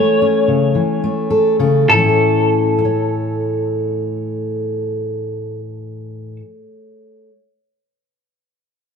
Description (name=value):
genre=folk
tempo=100 BPM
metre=4/4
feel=straight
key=A major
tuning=A4 = 440 Hz
part: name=clean electric guitar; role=melody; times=0.0-6.4 s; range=A4 to C#5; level=-18 LUFS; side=left 3 dB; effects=tremolo
part: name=fingerpicked steel-string acoustic guitar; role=accompaniment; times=0.0-7.4 s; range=A2 to C#5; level=-16 LUFS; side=left 1 dB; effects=none
room=moderate large studio reverb, RT60 0.9 s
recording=band playing live in one room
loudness=-14 LUFS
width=side -6 dB against mid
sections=0.0-1.9 A section; 1.9-6.7 B section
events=slowing down 0.0-1.9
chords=0.0 A/C#; 1.9 A